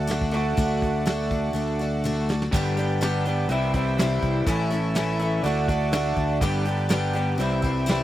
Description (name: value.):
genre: folk rock and heartland rock.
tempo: 123 BPM.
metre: 4/4.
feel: straight.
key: unclear.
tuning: A4 = 441 Hz.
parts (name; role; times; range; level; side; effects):
picked twelve-string acoustic guitar; accompaniment; 0.0-8.0 s; G2 to G4; -30 LUFS; left 4 dB; none.
accordion; sustained chords; 0.0-8.0 s; C4 to G5; -34 LUFS; right 4 dB; none.
electric guitar through a small old amp; riff; 0.0-8.0 s; G2 to G4; -26 LUFS; right 1 dB; none.
fingered electric bass; bass; 0.0-8.0 s; G1 to D2; -26 LUFS; equal; none.
soft brush drum kit; drums; 0.1-8.0 s; crash cymbal, hi-hat, kick drum, snare drum, toms; -27 LUFS; equal; none.
room: little or no reverb.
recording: recorded outdoors, with no room sound.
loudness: -21 LUFS.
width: side -13 dB against mid.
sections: 0.0-2.5 A section; 2.5-8.0 B section.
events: drum fill 2.0-2.5.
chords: 0.0 D; 2.5 G; 3.5 C; 4.5 A; 5.4 D; 6.4 G; 7.4 C.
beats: 0.09 | 0.58 1.06 1.55 2.04 | 2.52 3.01 3.49 3.98 | 4.46 4.95 5.44 5.92 | 6.41 6.90 7.39 7.87.